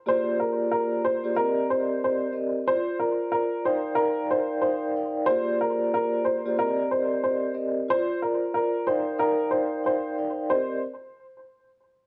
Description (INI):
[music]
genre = hip hop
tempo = 92 BPM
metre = 4/4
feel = swing 60% on 16ths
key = C minor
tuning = A4 = 440 Hz
[part]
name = warm upright piano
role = melody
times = 0.1-10.8 s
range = Bb4 to C5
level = -28 LUFS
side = equal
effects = high-pass filter, low-pass filter, analog delay
[part]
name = vibraphone with soft mallets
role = accompaniment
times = 0.1-10.8 s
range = Bb3 to G5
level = -29 LUFS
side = equal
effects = high-pass filter, low-pass filter, cassette tape
[sound]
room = moderate studio reverb, RT60 0.6 s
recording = home recording on cassette, nothing above 10.5 kHz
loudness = -26 LUFS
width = mono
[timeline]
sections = 0.0-10.5 A section; 10.5-12.1 B section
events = none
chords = 0.1 Bb13; 1.4 Cm7; 2.7 Bbadd9/F; 3.7 Ebmaj9; 5.3 Bb13; 6.6 Cm7; 7.9 Bbadd9/F; 8.9 Ebmaj9; 10.5 Cm7